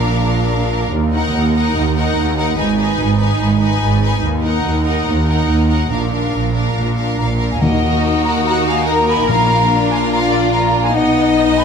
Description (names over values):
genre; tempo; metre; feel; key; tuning
cinematic; 144 BPM; 4/4; straight; Eb harmonic minor; A4 = 440 Hz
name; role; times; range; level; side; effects
rich symphonic violin section; melody; 0.0-11.6 s; D5 to Ab5; -24 LUFS; left 4 dB; none
bright symphonic violin section; second line; 0.0-11.6 s; D#4 to D#5; -22 LUFS; left 4 dB; none
rich symphonic viola section; accompaniment; 0.0-11.6 s; Bb3 to Eb4; -22 LUFS; right 1 dB; none
clear symphonic double bass section; bass; 0.0-11.6 s; Ab1 to Eb2; -18 LUFS; right 2 dB; none
rich symphonic cello section; bass; 0.0-11.6 s; Eb2 to Bb4; -20 LUFS; right 2 dB; none
silver concert flute; second line; 7.2-11.6 s; F5 to Cb6; -19 LUFS; left 1 dB; none
clear French horn section; sustained chords; 7.6-11.6 s; Bb3 to Eb4; -20 LUFS; left 6 dB; none
timpani; percussion; 7.6-9.9 s; Bb2 to Eb3; -21 LUFS; left 2 dB; none
room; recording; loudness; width
wet scoring stage reverb, RT60 1.8 s; none; -13 LUFS; side -6 dB against mid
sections
0.0-7.6 A section; 7.6-11.6 B section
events
build-up 0.0-7.6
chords
0.0 Bb; 0.9 Ebm; 2.6 Abm; 4.2 Ebm; 5.9 Bb; 7.6 Ebm; 9.3 Bb; 11.0 B